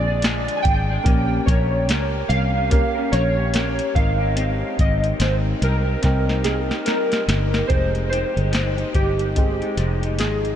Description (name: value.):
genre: indie pop, bedroom pop.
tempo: 72 BPM.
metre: 4/4.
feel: swing 60% on 16ths.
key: F minor.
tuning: A4 = 440 Hz.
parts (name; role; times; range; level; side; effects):
warbly lo-fi synth keys; melody; 0.0-10.6 s; G4 to Ab5; -24 LUFS; right 1 dB; ensemble chorus, analog delay.
electric guitar through a small old amp; accompaniment; 0.0-10.6 s; Bb2 to Bb4; -28 LUFS; left 4 dB; analog chorus, vibrato effect.
warm upright piano; accompaniment; 0.0-10.6 s; Ab3 to G5; -30 LUFS; right 2 dB; none.
fingered electric bass; bass; 0.0-10.5 s; F1 to Db2; -22 LUFS; equal; none.
soft vintage rhythm box; drums; 0.2-10.6 s; hi-hat, kick drum, snare drum; -23 LUFS; equal; none.
room: light reverb, digital ambience.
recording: none.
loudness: -18 LUFS.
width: side -10 dB against mid.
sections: 0.0-7.7 A section; 7.7-10.6 B section.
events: drum fill 6.0-7.7.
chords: 0.0 Bb7; 1.1 Gdim/Bb; 4.0 Abmaj7; 6.0 Cm7; 7.7 Fm9.